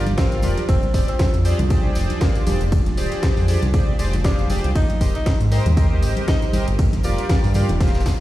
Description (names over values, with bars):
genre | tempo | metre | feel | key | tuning
deep house | 118 BPM | 4/4 | swing 56% on 16ths | F dorian | A4 = 443 Hz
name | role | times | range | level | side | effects
soft string machine | sustained chords | 0.0-8.2 s | F3 to C5 | -30 LUFS | right 1 dB | ensemble chorus, sidechain pumping
chorused polysynth | stabs | 0.0-8.0 s | F4 to F5 | -27 LUFS | equal | sidechain pumping, tape echo
round analog bass | bass | 0.0-8.0 s | D1 to Ab2 | -20 LUFS | equal | tube saturation, sidechain pumping
breakbeat sampler-style drum kit | drums | 0.1-8.2 s | hi-hat, snare drum, tambourine | -40 LUFS | equal | none
house drum kit | drums | 0.1-8.2 s | hi-hat, ride cymbal, snare drum | -31 LUFS | equal | none
congas | percussion | 0.1-7.8 s | none | -29 LUFS | left 1 dB | none
tambourine | percussion | 0.1-8.2 s | none | -43 LUFS | right 3 dB | none
warm tenor saxophone | melody | 0.2-6.5 s | Bb3 to Eb4 | -31 LUFS | equal | tape echo
electronic kick drum | drums | 0.2-8.2 s | none | -18 LUFS | equal | none
room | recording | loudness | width
little or no reverb | played on a big sound system in a bare room, large studio reverb, vinyl crackle | -16 LUFS | side -15 dB against mid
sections
0.0-8.2 A section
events
none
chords
0.0 Gm7; 0.7 Fm69; 4.8 Abmaj9; 6.8 Gm7